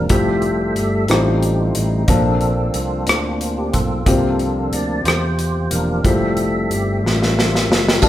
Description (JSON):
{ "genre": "slow gospel", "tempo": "60 BPM (dotted quarters)", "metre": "6/8", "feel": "straight", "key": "F major", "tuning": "A4 = 441 Hz", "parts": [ { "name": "warm upright piano", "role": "accompaniment", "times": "0.0-8.1 s", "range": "G2 to C5", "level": "-22 LUFS", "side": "left 2 dB", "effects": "none" }, { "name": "percussive tonewheel organ", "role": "sustained chords", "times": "0.0-8.1 s", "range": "F3 to E5", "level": "-21 LUFS", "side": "equal", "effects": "slow rotary speaker, chorus vibrato" }, { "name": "fretless electric bass", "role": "bass", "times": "0.0-8.1 s", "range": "E1 to E2", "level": "-21 LUFS", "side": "equal", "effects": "none" }, { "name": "modern studio drum kit", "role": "drums", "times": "0.1-8.1 s", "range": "crash cymbal, hi-hat, kick drum, rim click, snare drum", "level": "-18 LUFS", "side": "equal", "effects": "none" }, { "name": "tambourine", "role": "percussion", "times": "8.0-8.1 s", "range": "none", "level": "-20 LUFS", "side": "right 11 dB", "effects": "none" } ], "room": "moderate large studio reverb, RT60 1.2 s", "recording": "band playing live in one room", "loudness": "-15 LUFS", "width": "side -13 dB against mid", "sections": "0.0-8.0 A section", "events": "tonewheel organ solo 0.0-8.0; drum fill 7.0-8.0", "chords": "0.1 Fmaj9; 1.1 F7/A; 2.1 Bbmaj9; 4.1 C7sus4; 6.0 Fmaj9", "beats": "| 0.10 1.09 | 2.08 3.07 | 4.06 5.05 | 6.05 7.04 | 8.03" }